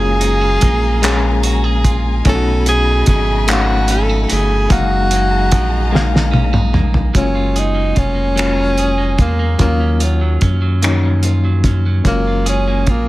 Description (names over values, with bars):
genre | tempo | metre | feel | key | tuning
slow six-eight R&B | 49 BPM (dotted quarters) | 6/8 | straight | F# major | A4 = 440 Hz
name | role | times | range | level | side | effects
warm tenor saxophone | melody | 0.0-13.1 s | F#3 to A4 | -19 LUFS | equal | none
electric guitar at the edge of break-up | second line | 0.0-13.1 s | F#2 to G#4 | -24 LUFS | right 5 dB | none
overdriven reed electric piano | accompaniment | 0.0-13.1 s | E#3 to E#5 | -22 LUFS | left 5 dB | fast tremolo
warm studio string section | sustained chords | 0.0-7.1 s | A3 to B5 | -26 LUFS | left 2 dB | none
rubbery square bass | bass | 0.0-13.1 s | E#1 to F#2 | -16 LUFS | equal | none
cloth-damped thuddy drum kit | drums | 0.2-13.1 s | finger snaps, handclaps, hi-hat, kick drum, snare drum, toms | -17 LUFS | equal | none
room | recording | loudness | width
little or no reverb | none | -12 LUFS | side -17 dB against mid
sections
0.0-7.2 A section; 7.2-13.1 B section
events
drum fill 5.9-7.2; tenor saxophone solo 7.2-13.1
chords
0.0 F#maj9; 2.3 B7; 4.7 F#maj13; 7.2 F#maj9; 9.6 D#m9; 12.0 F#maj9